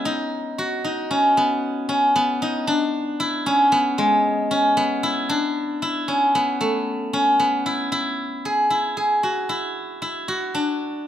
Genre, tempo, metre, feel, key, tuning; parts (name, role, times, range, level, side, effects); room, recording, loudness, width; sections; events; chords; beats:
contemporary instrumental, contemporary; 114 BPM; 5/4; straight; A4 = 445 Hz
steel-string zither; solo; 0.0-11.1 s; G#3 to G#4; -19 LUFS; equal
light reverb; -19 LUFS; side -10 dB against mid
0.0-7.9 A section; 7.9-11.1 B section
0.0 B; 2.7 E; 5.3 Bm7; 7.9 Eadd9; 10.5 D
| 0.05 0.57 1.10 1.62 2.15 | 2.67 3.19 3.72 4.24 4.77 | 5.29 5.82 6.34 6.87 7.39 | 7.92 8.44 8.96 9.49 10.01 | 10.54 11.06